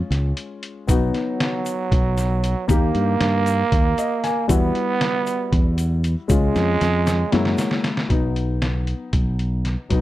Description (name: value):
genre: progressive instrumental, band music in an uneven meter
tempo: 233 BPM (eighths)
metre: 7/8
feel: straight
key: unclear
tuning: A4 = 440 Hz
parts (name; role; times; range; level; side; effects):
- dark grand piano; accompaniment; 0.0-10.0 s; F#3 to G#5; -25 LUFS; left 5 dB; none
- fingered electric bass; bass; 0.1-10.0 s; B1 to G2; -21 LUFS; equal; none
- trip hop sampler-style drum kit; drums; 0.1-10.0 s; hi-hat, kick drum, snare drum; -23 LUFS; equal; none
- growling trombone; second line; 0.9-7.8 s; F#3 to B3; -23 LUFS; right 6 dB; none
- tube shaker; percussion; 0.9-7.8 s; none; -38 LUFS; left 6 dB; none
room: small room reverb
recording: dry, close 1970s-style studio recording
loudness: -18 LUFS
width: side -15 dB against mid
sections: 0.0-8.1 A section; 8.1-10.0 B section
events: grand piano fill 3.7-4.5; drum fill 6.6-8.1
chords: 0.0 C#; 0.9 B; 2.7 D#; 4.5 Emadd9; 6.3 C#; 7.3 F#7; 8.1 B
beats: 0.12 0.37 0.63 | 0.89 1.15 1.41 1.66 1.92 2.18 2.44 | 2.69 2.95 3.21 3.47 3.73 3.98 4.24 | 4.50 4.75 5.01 5.27 5.53 5.78 6.04 | 6.30 6.56 6.81 7.07 7.33 7.59 7.84 | 8.10 8.36 8.62 8.88 9.13 9.39 9.65 | 9.91